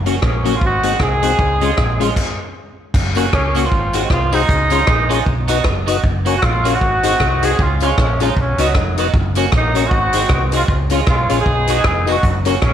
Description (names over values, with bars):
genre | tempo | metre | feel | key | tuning
ska | 155 BPM | 4/4 | swing 58% on 8ths | F# major | A4 = 439 Hz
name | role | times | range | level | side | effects
hollow-body short-scale fingered electric bass | bass | 0.0-12.7 s | E#1 to C#2 | -19 LUFS | equal | none
clean electric guitar | accompaniment | 0.1-12.7 s | G#3 to F#4 | -23 LUFS | right 9 dB | analog chorus
mellow tonewheel organ | stabs | 0.1-12.6 s | F#3 to D#5 | -22 LUFS | left 9 dB | slow rotary speaker
swinging big-band drum kit | drums | 0.1-12.7 s | crash cymbal, hi-hat, kick drum, rim click | -19 LUFS | equal | none
warm horn section | melody | 0.2-12.7 s | E#3 to G#4 | -19 LUFS | right 1 dB | slapback echo
tambourine | percussion | 3.2-12.5 s | none | -36 LUFS | left 10 dB | none
room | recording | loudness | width
moderate echo chamber reverb, RT60 1.9 s, small room reverb | 1960s-style stereo with parts hard left and right | -13 LUFS | side -9 dB against mid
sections
0.0-2.9 A section; 2.9-12.7 A section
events
stop 2.2-2.9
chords
0.0 F#; 0.6 G#7; 1.4 C#; 2.2 G#/B#; 2.5 N.C.; 2.9 F#; 3.7 G#7; 4.5 C#; 5.3 B; 6.0 F#; 6.8 G#7; 7.6 C#; 8.4 B; 9.1 F#; 9.9 G#7; 10.7 C#; 11.5 B; 12.2 F#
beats
0.23 0.61 1.00 | 1.39 1.77 2.16 2.55 | 2.94 3.32 3.71 4.10 | 4.49 4.87 5.26 5.65 | 6.04 6.42 6.81 7.20 | 7.58 7.97 8.36 8.75 | 9.13 9.52 9.91 10.30 | 10.68 11.07 11.46 11.85 | 12.23 12.62